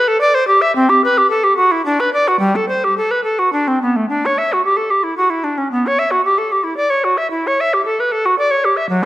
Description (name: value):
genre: classical, baroque-style fantasia for unaccompanied recorder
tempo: 102-115 BPM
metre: 3/4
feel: rubato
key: G major, D major from 4.1 s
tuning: A4 = 440 Hz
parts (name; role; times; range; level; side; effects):
- bass recorder; solo; 0.0-9.0 s; F#3 to E5; -13 LUFS; equal; none
room: wet recital hall reverb, RT60 1.5 s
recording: none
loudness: -13 LUFS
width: side -15 dB against mid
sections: 0.0-4.1 A section; 4.1-9.1 A section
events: none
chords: none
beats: 0.19 | 0.73 1.28 1.83 | 2.39 2.96 3.52 | 4.10 4.65 5.17 | 5.71 6.24 6.78 | 7.31 7.85 8.37 | 8.89